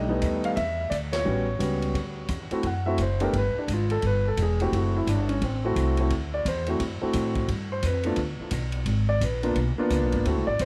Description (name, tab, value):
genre	jazz piano trio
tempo	173 BPM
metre	4/4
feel	swing 63% on 8ths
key	D mixolydian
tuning	A4 = 442 Hz
part	warm concert grand piano	melody	0.0-10.7 s	G3 to F#5	-29 LUFS	equal	tape echo
part	upright bass	bass	0.0-10.7 s	E1 to A2	-29 LUFS	equal	none
part	swinging big-band drum kit	drums	0.2-10.7 s	hi-hat, kick drum, ride cymbal, snare drum	-38 LUFS	equal	none
room	light reverb, small room ambience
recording	none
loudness	-26 LUFS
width	mono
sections	0.0-2.0 A section; 2.0-10.7 B section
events	band accent 1.1; grand piano solo 2.0-10.7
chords	0.0 B7b13; 0.6 Dsus2; 1.3 A13; 2.0 D7; 3.3 Emadd11; 4.7 D7; 7.5 G7; 8.9 G#dim7